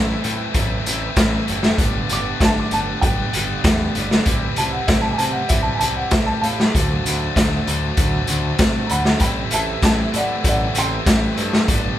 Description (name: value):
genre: indie rock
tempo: 97 BPM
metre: 4/4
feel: straight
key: unclear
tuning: A4 = 441 Hz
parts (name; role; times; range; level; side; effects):
- dark upright piano; melody; 0.0-12.0 s; D5 to D6; -24 LUFS; right 1 dB; none
- fuzz guitar; riff; 0.0-12.0 s; G2 to A4; -28 LUFS; right 6 dB; distortion
- scooped high-gain guitar; riff; 0.0-12.0 s; G2 to E4; -26 LUFS; left 8 dB; distortion
- growling picked electric bass; bass; 0.0-11.9 s; F#1 to C3; -26 LUFS; equal; overdrive
- raw garage drum kit; drums; 0.2-11.8 s; hi-hat, kick drum, snare drum; -18 LUFS; equal; none
- mellow tonewheel organ; sustained chords; 6.8-12.0 s; B3 to D5; -33 LUFS; equal; slow rotary speaker
- egg shaker; percussion; 6.8-11.8 s; none; -34 LUFS; right 9 dB; none
room: light reverb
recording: band playing live in one room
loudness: -16 LUFS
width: side -12 dB against mid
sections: 0.0-12.0 A section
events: upright piano solo 0.0-12.0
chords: 0.0 Am; 1.8 G; 4.3 C6; 6.7 D7; 9.2 Am7